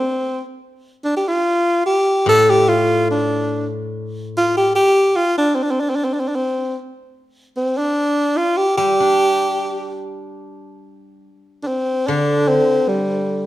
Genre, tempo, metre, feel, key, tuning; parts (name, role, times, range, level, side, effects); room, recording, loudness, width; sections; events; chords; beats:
chinese traditional, Chinese chamber ensemble; 73 BPM; 2/4; rubato; G shang mode; A4 = 437 Hz
breathy tenor saxophone; melody; 0.0-13.5 s; G3 to A4; -16 LUFS; equal
steel-string zither; accompaniment; 2.3-4.7, 8.8-13.5 s; A2 to D4; -21 LUFS; equal
moderate recital hall reverb, RT60 1.3 s; -15 LUFS; side -15 dB against mid
0.0-10.5 A section; 10.5-13.5 B section
| 0.63 1.45 | 2.27 3.10 | 3.92 4.74 | 5.55 6.36 | 7.16 7.97 | 8.79 9.62 | 10.45 11.28 | 12.10 12.90